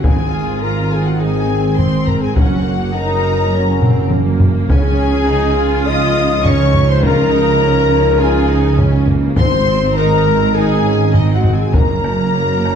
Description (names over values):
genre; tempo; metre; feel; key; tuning
cinematic, epic orchestral film score; 103 BPM; 4/4; straight; Ab mixolydian; A4 = 440 Hz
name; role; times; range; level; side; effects
warm symphonic violin section; melody; 0.0-12.8 s; Eb5 to Eb6; -27 LUFS; left 2 dB; none
warm symphonic violin section; second line; 0.0-12.8 s; Eb5 to Eb6; -24 LUFS; left 4 dB; none
rich symphonic viola section; accompaniment; 0.0-12.8 s; Bb3 to F4; -23 LUFS; equal; none
dark trombone section; sustained chords; 0.0-12.8 s; Eb3 to Eb4; -24 LUFS; right 2 dB; none
warm French horn section; sustained chords; 0.0-12.8 s; Eb4 to Eb5; -18 LUFS; left 3 dB; none
dark symphonic cello section; bass; 0.0-12.8 s; Gb2 to Db3; -20 LUFS; right 2 dB; none
dark tuba; bass; 0.0-12.8 s; Gb1 to Db2; -21 LUFS; right 3 dB; none
warm studio double bass section; bass; 0.0-12.8 s; Gb1 to Db2; -20 LUFS; right 3 dB; none
solo taiko drums; drums; 0.0-12.8 s; none; -17 LUFS; left 1 dB; none
timpani; percussion; 9.4-10.2 s; Ab2; -24 LUFS; left 1 dB; none
room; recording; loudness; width
wet scoring stage reverb, RT60 1.7 s; dark, warm production; -12 LUFS; side -7 dB against mid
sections
0.0-12.8 A section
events
drum fill 3.8-4.7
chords
0.0 Ab; 2.4 Gb; 4.7 Dbadd9; 9.4 Ab; 11.7 Gb